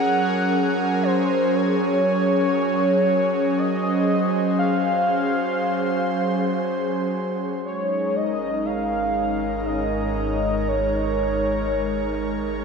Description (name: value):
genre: ambient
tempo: free time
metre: none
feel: none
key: unclear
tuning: A4 = 440 Hz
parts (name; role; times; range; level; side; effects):
- warm velvety synth lead; melody; 0.0-12.6 s; C5 to Gb5; -24 LUFS; equal; chorus, diffuse ambient delay
- airy breathy pad; sustained chords; 0.0-12.6 s; Gb3 to Db5; -22 LUFS; right 1 dB; chorus
- deep rumbling drone; bass; 8.7-12.6 s; Ab1; -31 LUFS; equal; built-in reverb
room: wet lush hall reverb, RT60 2.8 s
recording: none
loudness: -20 LUFS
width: side -5 dB against mid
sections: 0.0-7.6 A section; 7.6-12.6 B section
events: none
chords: 0.0 Gbmaj7; 7.6 Absus4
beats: free time